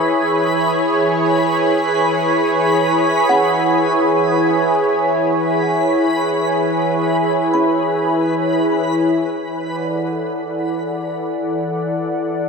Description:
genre	ambient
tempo	free time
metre	none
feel	none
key	unclear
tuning	A4 = 439 Hz
part	warm analog pad	sustained chords	0.0-12.5 s	E3 to G#5	-16 LUFS	equal	chorus
part	backwards swelling texture	texture	0.0-9.4 s	B4 to B5	-23 LUFS	equal	built-in reverb
part	kalimba	arpeggios	3.3-9.2 s	F#5 to B5	-26 LUFS	right 1 dB	diffuse ambient delay
room	wet huge ambient reverb, RT60 9.3 s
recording	none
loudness	-15 LUFS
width	side -5 dB against mid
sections	0.0-9.4 A section; 9.4-12.5 B section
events	none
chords	0.0 C#m/E; 9.4 E7sus4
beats	free time

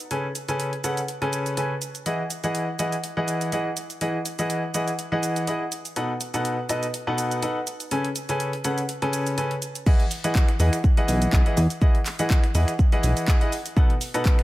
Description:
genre	piano house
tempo	123 BPM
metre	4/4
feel	swing 55% on 16ths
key	E major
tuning	A4 = 440 Hz
part	house drum kit	drums	0.0-14.4 s	crash cymbal, finger snaps, handclaps, hi-hat, shaker	-32 LUFS	right 1 dB	studio reverb
part	bright grand piano	riff	0.1-14.4 s	B2 to G#5	-25 LUFS	equal	sidechain pumping, low-pass filter, digital delay
part	electronic kick drum	drums	9.9-14.4 s	none	-18 LUFS	equal	studio reverb
part	plucky analog bass	bass	10.6-13.1 s	B1 to E2	-20 LUFS	equal	sidechain pumping
room	light reverb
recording	none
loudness	-22 LUFS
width	side -16 dB against mid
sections	0.0-9.9 A section; 9.9-14.4 B section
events	drop 9.9-14.4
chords	0.0 Amaj9/C#; 2.1 Emaj9; 5.7 B7; 7.7 Amaj9/C#; 9.9 Emaj9; 13.5 B7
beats	| 0.11 0.60 1.08 1.57 | 2.06 2.55 3.04 3.52 | 4.01 4.50 4.99 5.47 | 5.96 6.45 6.94 7.43 | 7.91 8.40 8.89 9.38 | 9.87 10.35 10.84 11.33 | 11.82 12.30 12.79 13.28 | 13.77 14.26

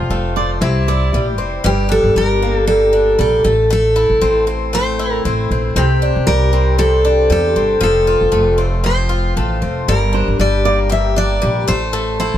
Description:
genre	acoustic pop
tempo	117 BPM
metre	4/4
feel	swing 55% on 16ths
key	unclear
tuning	A4 = 440 Hz
part	picked steel-string acoustic guitar	melody	0.0-12.4 s	E4 to E5	-16 LUFS	equal	none
part	picked twelve-string acoustic guitar	accompaniment	0.0-12.4 s	G2 to F4	-20 LUFS	left 3 dB	none
part	upright bass	bass	0.0-12.4 s	F1 to E2	-17 LUFS	equal	none
part	fingerpicked steel-string acoustic guitar	arpeggios	0.4-1.3, 10.1-12.3 s	C5 to D5	-24 LUFS	right 6 dB	none
room	light reverb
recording	none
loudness	-13 LUFS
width	side -11 dB against mid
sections	0.0-1.6 A section; 1.6-12.4 A section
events	none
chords	0.0 F; 0.6 C; 1.6 Gm; 3.4 Am; 5.8 Cadd9; 7.8 F; 9.9 Gm; 11.7 Am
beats	0.10 0.62 1.13 | 1.65 2.16 2.68 3.19 | 3.71 4.22 4.73 5.25 | 5.76 6.28 6.79 7.31 | 7.82 8.34 8.85 9.37 | 9.88 10.39 10.91 11.42 | 11.94

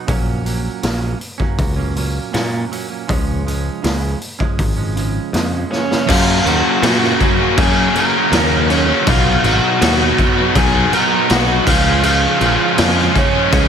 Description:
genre	quiet-loud alternative rock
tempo	80 BPM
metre	4/4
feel	straight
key	F# major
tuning	A4 = 440 Hz
part	semi-hollow electric guitar	arpeggios	0.0-6.1 s	A#2 to C#4	-24 LUFS	right 8 dB	none
part	modern bright picked electric bass	bass	0.1-13.7 s	G#1 to A#2	-19 LUFS	equal	none
part	raw garage drum kit	drums	0.1-13.7 s	crash cymbal, hi-hat, kick drum, snare drum	-17 LUFS	equal	none
part	bluesy overdriven lead guitar	melody	5.7-13.7 s	C#4 to A#5	-20 LUFS	right 1 dB	distortion, digital delay
part	distorted electric guitar	riff	6.1-13.7 s	F#2 to D#4	-19 LUFS	left 14 dB	distortion
part	sludgy distorted guitar	riff	6.1-13.7 s	F#2 to D#4	-21 LUFS	right 12 dB	overdrive
part	tight distorted guitar	riff	6.1-13.7 s	F#2 to D#4	-20 LUFS	right 2 dB	distortion
room	light reverb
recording	none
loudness	-13 LUFS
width	side -7 dB against mid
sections	0.0-6.1 A section; 6.1-13.7 B section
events	drum fill 5.7-6.1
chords	0.1 F#/A#; 3.1 C#; 6.1 F#; 9.1 B; 11.7 C#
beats	| 0.09 0.84 1.59 2.34 | 3.09 3.84 4.59 5.34 | 6.09 6.83 7.58 8.33 | 9.07 9.81 10.56 11.30 | 12.04 12.78 13.53

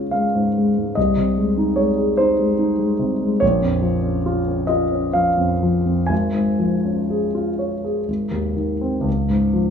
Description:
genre	classical, romantic nocturne for solo piano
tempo	59-74 BPM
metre	3/4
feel	rubato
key	Db major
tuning	A4 = 440 Hz
part	warm concert grand piano	solo	0.0-9.7 s	Ab1 to Ab5	-17 LUFS	equal	none
room	moderate recital hall reverb, RT60 1.5 s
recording	none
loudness	-17 LUFS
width	side -7 dB against mid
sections	0.0-9.7 A section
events	none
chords	0.0 Db; 1.0 Ab/C; 3.4 Bbm; 6.1 Db/Ab; 8.1 Ab; 9.1 Db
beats	0.12 | 0.96 1.78 2.60 | 3.42 4.26 5.16 | 6.11 7.12 8.07 | 9.06

